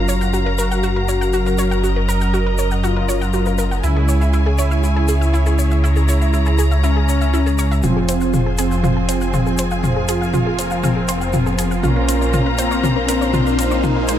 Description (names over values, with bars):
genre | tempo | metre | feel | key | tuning
melodic techno | 120 BPM | 4/4 | straight | F harmonic minor | A4 = 442 Hz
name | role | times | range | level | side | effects
analog synth brass | melody | 0.0-14.2 s | Ab3 to Bb4 | -24 LUFS | equal | chorus, dub echo
clear studio string section | sustained chords | 0.0-14.2 s | Gb3 to Bb5 | -26 LUFS | left 2 dB | none
brassy analog pad | stabs | 0.0-14.2 s | Db3 to Bb4 | -23 LUFS | equal | chorus, cassette tape
dark detuned saw bass | bass | 0.0-14.2 s | F1 to Db2 | -18 LUFS | equal | tube saturation
analog pluck | arpeggios | 0.1-14.2 s | Fb4 to Gb5 | -25 LUFS | right 1 dB | chorus, dub echo
egg shaker | percussion | 0.1-14.2 s | none | -32 LUFS | left 5 dB | none
deep house drum kit | drums | 7.8-14.2 s | hi-hat, toms | -20 LUFS | left 2 dB | small room ambience
riser | sound effects | 9.8-14.2 s | none | -27 LUFS | left 1 dB | none
room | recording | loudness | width
little or no reverb | dark, warm production | -15 LUFS | side -10 dB against mid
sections
0.0-7.8 A section; 7.8-14.2 B section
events
filter sweep on analog polysynth 0.0-7.8; filter sweep on analog synth pad 0.0-7.8; build-up 7.8-14.2; drum fill 7.8-14.2; riser 9.8-14.2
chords
0.0 Gb; 3.8 Dbm; 7.8 Fm; 11.8 Bbmadd9